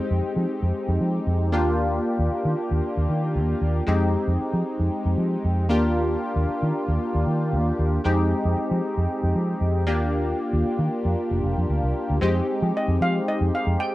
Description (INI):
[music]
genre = early-eighties boogie funk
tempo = 115 BPM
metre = 4/4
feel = straight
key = unclear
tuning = A4 = 441 Hz
[part]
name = funky polysynth comp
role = accompaniment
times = 0.0-13.9 s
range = Ab3 to G4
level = -24 LUFS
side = left 1 dB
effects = chorus, plate reverb
[part]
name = vintage muted fingered electric bass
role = bass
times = 0.1-13.8 s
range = F1 to F3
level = -23 LUFS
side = equal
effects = none
[part]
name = steel pan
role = melody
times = 12.8-13.9 s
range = Eb5 to G5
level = -26 LUFS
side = right 1 dB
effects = none
[sound]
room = light reverb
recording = rough home demo mix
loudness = -21 LUFS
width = side -17 dB against mid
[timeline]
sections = 0.0-12.2 A section; 12.2-13.9 B section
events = none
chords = 0.0 Fm7; 1.5 Ebmaj9; 3.9 Fm7; 5.7 Ebmaj9; 8.0 Fm7; 9.9 Ebmaj9; 12.2 Fm7